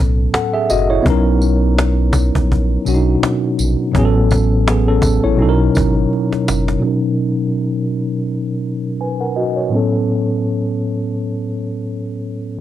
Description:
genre	lo-fi hip hop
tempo	83 BPM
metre	4/4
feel	swing 56% on 16ths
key	B major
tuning	A4 = 440 Hz
part	tine electric piano	accompaniment	0.0-12.6 s	A2 to G#5	-16 LUFS	equal	medium stereo tremolo, cassette tape, low-pass filter
part	sub bass with octave	bass	0.0-6.8 s	F#1 to B1	-16 LUFS	equal	none
part	cajon	drums	0.3-6.8 s	none	-18 LUFS	equal	none
part	tambourine	percussion	0.7-6.7 s	none	-30 LUFS	right 2 dB	none
room	light reverb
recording	dry, gritty hardware recording, transformer saturation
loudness	-14 LUFS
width	side -12 dB against mid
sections	0.0-6.8 A section; 6.8-12.6 B section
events	drum fill 6.1-6.8; filter sweep on tine electric piano 6.8-12.6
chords	0.0 A69; 1.1 Bmaj9; 3.9 A69; 5.4 Bmaj9; 9.7 A69

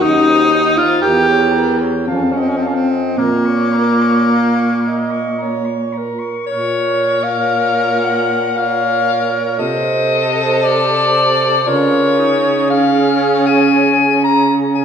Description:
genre	classical, lyrical piece for single-reed quartet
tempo	53-60 BPM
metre	3/4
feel	rubato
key	Bb minor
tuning	A4 = 444 Hz
part	warm soprano saxophone	melody	0.0-14.8 s	Db5 to Db6	-18 LUFS	left 4 dB	none
part	clear alto saxophone	second line	0.0-14.8 s	Ab4 to F5	-22 LUFS	right 6 dB	none
part	warm tenor saxophone	accompaniment	0.0-14.8 s	Bb3 to Bb4	-16 LUFS	equal	none
part	mellow baritone saxophone	bass	0.0-14.8 s	Eb2 to Db3	-18 LUFS	right 2 dB	none
room	wet recital hall reverb, RT60 1.8 s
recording	heard from further back in the room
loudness	-12 LUFS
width	side -7 dB against mid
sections	0.0-6.5 A section; 6.5-14.8 B section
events	none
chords	0.0 Cdim/Eb; 1.0 Edim7; 2.1 F7b9; 3.2 Bbm; 9.6 Adim/C; 11.7 Bbm/Db; 12.7 Db5

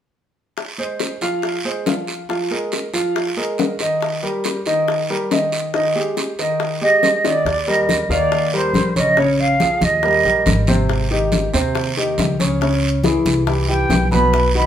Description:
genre	Afro-Cuban jazz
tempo	140 BPM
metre	4/4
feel	straight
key	Eb major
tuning	A4 = 440 Hz
part	bongos	percussion	0.6-14.6 s	none	-24 LUFS	left 6 dB	none
part	guiro	percussion	0.6-14.7 s	none	-28 LUFS	right 3 dB	none
part	warm concert grand piano	accompaniment	0.8-14.7 s	Cb3 to F5	-20 LUFS	equal	none
part	concert flute	melody	6.8-10.7, 13.7-14.7 s	C5 to Cb6	-17 LUFS	right 2 dB	none
part	upright bass	bass	7.5-14.7 s	Ab1 to Eb2	-22 LUFS	equal	none
part	congas	percussion	7.5-14.7 s	none	-23 LUFS	left 1 dB	none
room	wet studio reverb, RT60 0.7 s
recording	minimal, uncompressed stereo recording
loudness	-16 LUFS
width	side -10 dB against mid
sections	0.6-7.5 A section; 7.5-14.7 B section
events	drum fill 7.2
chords	0.6 Fm; 2.3 Bb5; 4.0 Eb; 5.7 Ab5; 7.5 Eb69; 9.2 Bbm7; 10.0 Eb; 10.9 Abmaj7; 12.6 Dbm; 13.5 C

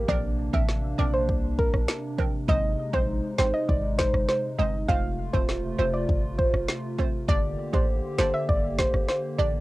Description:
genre	dancehall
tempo	100 BPM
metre	4/4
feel	straight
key	F major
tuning	A4 = 441 Hz
part	hollow soft pad	sustained chords	0.0-9.6 s	C3 to G4	-32 LUFS	equal	chorus, sidechain pumping, cassette tape
part	clean 808-style bass	bass	0.0-9.6 s	E1 to C2	-28 LUFS	equal	none
part	soft round pluck	melody	0.1-9.5 s	Bb4 to F5	-28 LUFS	equal	chorus, cassette tape
part	hollow square pluck	accompaniment	0.1-9.6 s	F3 to D5	-33 LUFS	right 7 dB	chorus, phaser, cassette tape
part	afro-pop drum kit	drums	0.1-9.2 s	kick drum, rim click, snare drum	-27 LUFS	equal	cassette tape
room	light reverb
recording	home recording on cassette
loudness	-23 LUFS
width	side -18 dB against mid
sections	0.0-9.6 A section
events	none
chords	0.1 Bbadd9; 2.5 Ab; 4.9 F; 7.3 Gm

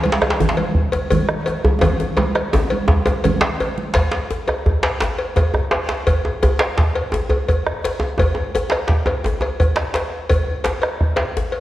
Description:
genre	west african traditional, West African drum ensemble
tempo	113 BPM (dotted quarters)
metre	12/8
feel	straight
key	none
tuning	none
part	cowbell	percussion	0.0-11.6 s	none	-24 LUFS	left 2 dB	none
part	congas	percussion	0.1-3.9 s	none	-22 LUFS	right 2 dB	none
part	djembe	percussion	0.1-11.3 s	none	-21 LUFS	equal	none
part	bombo	percussion	0.2-11.2 s	none	-21 LUFS	right 1 dB	none
part	djembe	percussion	0.4-11.6 s	none	-26 LUFS	left 2 dB	none
room	wet scoring stage reverb, RT60 1.6 s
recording	worn, warbling old tape, cassette tape, warbly pitch drift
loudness	-16 LUFS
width	side -14 dB against mid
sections	0.0-4.0 A section; 4.0-11.6 A section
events	drum fill 1.8-4.0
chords	none

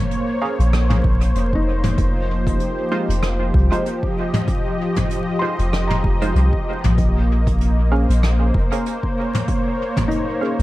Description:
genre	ambient dub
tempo	96 BPM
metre	4/4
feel	swing 56% on 16ths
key	F minor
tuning	A4 = 440 Hz
part	warm analog pad	sustained chords	0.0-10.6 s	F3 to Eb5	-23 LUFS	equal	chorus
part	felt-muted upright piano	arpeggios	0.0-10.6 s	Eb4 to C6	-30 LUFS	left 2 dB	tape echo
part	soft brush drum kit	drums	0.1-10.6 s	hi-hat, rim click, toms	-26 LUFS	left 1 dB	dub echo
part	filtered dub chord stab	stabs	0.4-10.6 s	Ab3 to F5	-28 LUFS	right 2 dB	lush chorus, dub echo
part	soft dub sub bass	bass	0.6-10.6 s	F1 to C2	-17 LUFS	equal	none
part	electronic kick drum	drums	1.0-10.1 s	none	-23 LUFS	equal	none
room	small room reverb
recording	dark, warm production, vinyl crackle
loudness	-17 LUFS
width	side -17 dB against mid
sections	0.0-10.6 A section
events	none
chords	0.0 Bbm7; 2.0 Fm7; 7.0 Bbm7

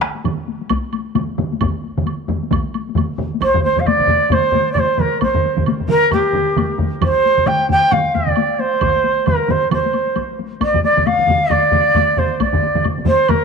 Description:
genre	japanese traditional, taiko drum ensemble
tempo	133 BPM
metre	4/4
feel	swing 60% on 16ths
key	C suspended pentatonic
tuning	A4 = 444 Hz
part	taiko ensemble	percussion	0.0-13.4 s	none	-24 LUFS	left 12 dB	none
part	taiko ensemble	percussion	0.0-13.4 s	none	-22 LUFS	left 4 dB	none
part	taiko ensemble	percussion	0.0-13.4 s	none	-23 LUFS	right 8 dB	none
part	woodblock	percussion	0.3-13.4 s	none	-28 LUFS	right 9 dB	none
part	taiko ensemble	percussion	0.7-12.5 s	none	-26 LUFS	right 2 dB	none
part	shakuhachi	melody	3.4-13.4 s	G4 to G5	-15 LUFS	right 1 dB	none
room	moderate plate reverb, RT60 3.6 s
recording	1960s-style stereo with parts hard left and right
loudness	-14 LUFS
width	side -5 dB against mid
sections	0.0-3.4 A section; 3.4-13.4 B section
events	none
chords	none

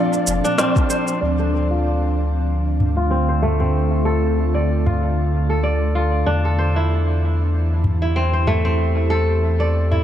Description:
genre	organic downtempo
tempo	95 BPM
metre	4/4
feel	swing 56% on 16ths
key	D minor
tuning	A4 = 440 Hz
part	breathy bansuri	melody	0.0-0.6 s	D5	-31 LUFS	equal	none
part	ethereal airy pad	sustained chords	0.0-10.0 s	Bb2 to G4	-24 LUFS	right 1 dB	ensemble chorus, built-in reverb, sidechain pumping, shimmer reverb
part	kora	arpeggios	0.0-10.0 s	A3 to D5	-22 LUFS	equal	low-pass filter, dub echo, shimmer reverb
part	electronic shaker and snare drum	drums	0.1-1.2 s	none	-26 LUFS	equal	low-pass filter on perc, low-pass filter on snare, dub echo
part	warm sub bass	bass	0.3-10.0 s	F1 to E2	-19 LUFS	equal	sidechain pumping
part	electronic kick drum	drums	0.8-0.9 s	none	-18 LUFS	equal	none
part	udu	percussion	2.8-10.0 s	none	-25 LUFS	left 1 dB	none
room	moderate spring reverb, RT60 2.5 s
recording	echo-heavy mix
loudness	-17 LUFS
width	side -10 dB against mid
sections	0.0-1.2 A section; 1.2-10.0 B section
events	band accent 0.6-0.9; filter sweep on kora 1.2-10.0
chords	0.0 Bbmaj7; 1.2 Dm7; 6.3 Emadd11

